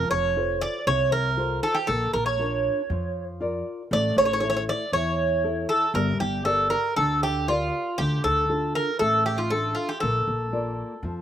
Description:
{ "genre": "greek folk, Greek bouzouki band", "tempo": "118 BPM", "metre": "4/4", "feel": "straight", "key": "unclear", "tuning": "A4 = 440 Hz", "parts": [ { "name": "Greek bouzouki", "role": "melody", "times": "0.0-11.2 s", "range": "F4 to D5", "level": "-23 LUFS", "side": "right 1 dB", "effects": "slapback echo" }, { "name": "nylon-string guitar", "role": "accompaniment", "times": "0.0-11.2 s", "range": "C3 to D5", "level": "-30 LUFS", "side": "left 1 dB", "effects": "slapback echo" }, { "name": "upright bass", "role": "bass", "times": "0.0-11.2 s", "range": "F1 to F2", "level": "-30 LUFS", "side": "equal", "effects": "none" } ], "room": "little or no reverb", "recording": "recorded outdoors, with no room sound", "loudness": "-22 LUFS", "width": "side -10 dB against mid", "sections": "0.0-11.2 A section", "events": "none", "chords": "0.0 F; 1.9 Bb; 3.9 A; 5.9 Gm; 8.0 Dm; 10.0 Bb" }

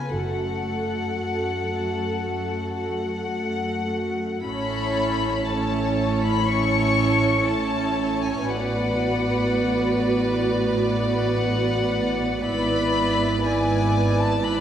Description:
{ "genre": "classical, slow romantic movement for string orchestra", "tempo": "50-62 BPM", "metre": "4/4", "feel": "rubato", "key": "F# minor, A major from 4.5 s", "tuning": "A4 = 440 Hz", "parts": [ { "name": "warm chamber violin section", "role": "melody", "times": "0.0-14.6 s", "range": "F#5 to C#6", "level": "-28 LUFS", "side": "left 6 dB", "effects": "none" }, { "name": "warm chamber violin section", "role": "second line", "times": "0.0-14.6 s", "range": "A4 to D5", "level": "-28 LUFS", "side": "left 2 dB", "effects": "none" }, { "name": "warm chamber viola section", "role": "accompaniment", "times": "0.0-14.6 s", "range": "A3 to F#4", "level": "-25 LUFS", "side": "right 3 dB", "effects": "none" }, { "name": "clear chamber double bass section", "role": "bass", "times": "0.1-14.6 s", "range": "F#1 to A1", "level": "-29 LUFS", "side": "right 1 dB", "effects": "none" }, { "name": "warm studio cello section", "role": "bass", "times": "0.1-14.6 s", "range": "F#2 to A2", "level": "-29 LUFS", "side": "right 2 dB", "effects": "none" } ], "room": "wet recital hall reverb, RT60 1.6 s", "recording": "none", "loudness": "-21 LUFS", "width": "side -9 dB against mid", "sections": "0.0-4.5 A section; 4.5-14.6 B section", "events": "none", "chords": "0.1 F#m; 4.5 A; 8.5 Bm7/A; 12.5 E7/G#" }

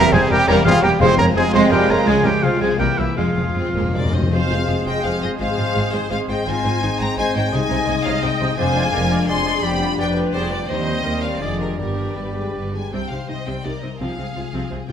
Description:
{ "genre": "classical, dramatic, fast romantic movement for symphony orchestra", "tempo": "168 BPM", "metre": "3/4", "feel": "rubato", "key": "F minor, C minor from 8.6 s", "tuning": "A4 = 441 Hz", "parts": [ { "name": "clear symphonic violin section", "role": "melody", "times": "0.0-14.9 s", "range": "E4 to C6", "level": "-26 LUFS", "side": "left 3 dB", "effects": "none" }, { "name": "clear oboe", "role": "second line", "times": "0.0-12.7 s", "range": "C5 to C6", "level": "-26 LUFS", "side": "right 2 dB", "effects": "none" }, { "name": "clear symphonic violin section", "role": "second line", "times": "0.0-14.9 s", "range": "G3 to D5", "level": "-31 LUFS", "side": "left 1 dB", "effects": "none" }, { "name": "mellow silver concert flute", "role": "second line", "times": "0.0-12.7 s", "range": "G4 to Ab5", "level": "-28 LUFS", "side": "left 2 dB", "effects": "none" }, { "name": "rich symphonic viola section", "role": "accompaniment", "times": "0.0-14.9 s", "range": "F3 to Eb5", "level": "-26 LUFS", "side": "right 3 dB", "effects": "none" }, { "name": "dark French horn section", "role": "sustained chords", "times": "0.0-12.9 s", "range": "E3 to Eb4", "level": "-25 LUFS", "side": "left 3 dB", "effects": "none" }, { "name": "warm trombone section", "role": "sustained chords", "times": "0.0-4.1 s", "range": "C3 to Bb3", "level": "-23 LUFS", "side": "right 4 dB", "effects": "none" }, { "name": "concert harp", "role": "arpeggios", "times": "0.0-14.9 s", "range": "F2 to Ab5", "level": "-28 LUFS", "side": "left 8 dB", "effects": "none" }, { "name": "mellow trumpet", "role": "stabs", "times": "0.0-4.1 s", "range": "E4 to C5", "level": "-23 LUFS", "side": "right 2 dB", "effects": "none" }, { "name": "rich symphonic cello section", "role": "bass", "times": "0.0-14.9 s", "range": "C2 to C3", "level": "-27 LUFS", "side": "right 1 dB", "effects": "none" }, { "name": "rich symphonic double bass section", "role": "bass", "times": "0.0-14.9 s", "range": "E1 to Eb2", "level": "-26 LUFS", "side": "right 2 dB", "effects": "none" }, { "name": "timpani", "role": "percussion", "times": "1.0-4.3 s", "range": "F2", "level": "-23 LUFS", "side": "left 2 dB", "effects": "none" }, { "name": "warm bassoon", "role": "accompaniment", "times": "4.3-12.7 s", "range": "G3 to Ab3", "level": "-31 LUFS", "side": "right 1 dB", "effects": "none" } ], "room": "moderate scoring stage reverb, RT60 1.8 s", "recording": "none", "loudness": "-17 LUFS", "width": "side -8 dB against mid", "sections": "0.0-4.3 A section; 4.3-12.9 B section; 12.9-14.9 C section", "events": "timpani fill 3.2-4.3", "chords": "0.0 C7/E; 1.0 Fm; 2.1 Db; 2.4 Fm/C; 2.8 C7; 3.2 Fm; 5.4 Fm/Ab; 6.5 Ab; 7.5 Ab/C; 8.6 Dm7b5/F; 9.6 G7/F; 10.7 Cm/Eb; 11.4 Ddim/F; 11.8 G; 12.9 Cm; 14.0 Fm/C" }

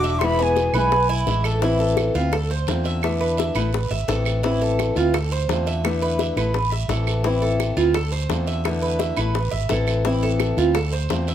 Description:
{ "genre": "latin, Cuban son and guajira", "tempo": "171 BPM", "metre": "4/4", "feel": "straight", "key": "A minor", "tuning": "A4 = 440 Hz", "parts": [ { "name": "silver concert flute", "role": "melody", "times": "0.0-1.2 s", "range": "G#5 to D6", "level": "-25 LUFS", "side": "left 1 dB", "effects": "none" }, { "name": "dark studio violin section", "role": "second line", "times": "0.0-1.2 s", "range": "B3 to F#4", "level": "-29 LUFS", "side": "right 2 dB", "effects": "none" }, { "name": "flamenco guitar", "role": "accompaniment", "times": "0.0-11.3 s", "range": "B2 to F#4", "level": "-24 LUFS", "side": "left 4 dB", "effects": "none" }, { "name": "Cuban tres", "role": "arpeggios", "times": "0.0-11.3 s", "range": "E4 to E5", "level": "-25 LUFS", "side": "right 5 dB", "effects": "none" }, { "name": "fretless electric bass", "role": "bass", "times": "0.0-11.3 s", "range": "E1 to E2", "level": "-23 LUFS", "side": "equal", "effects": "none" }, { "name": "bongos", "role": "percussion", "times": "0.0-11.3 s", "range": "none", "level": "-29 LUFS", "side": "left 8 dB", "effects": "none" }, { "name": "guiro", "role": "percussion", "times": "0.0-11.3 s", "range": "none", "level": "-36 LUFS", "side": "right 8 dB", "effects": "none" }, { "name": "claves", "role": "percussion", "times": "0.2-10.9 s", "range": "none", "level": "-34 LUFS", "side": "right 8 dB", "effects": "none" } ], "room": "moderate large studio reverb, RT60 1.1 s", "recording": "none", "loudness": "-19 LUFS", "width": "side -10 dB against mid", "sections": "0.0-1.6 A section; 1.6-11.3 B section", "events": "none", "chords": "0.2 E; 1.6 Amadd9; 2.3 Dm7; 3.0 E7sus4; 3.7 Amadd9; 5.1 Dm7; 5.8 E7sus4; 6.5 Amadd9; 7.9 Dm7; 8.6 E7sus4; 9.3 Amadd9; 10.8 Dm7" }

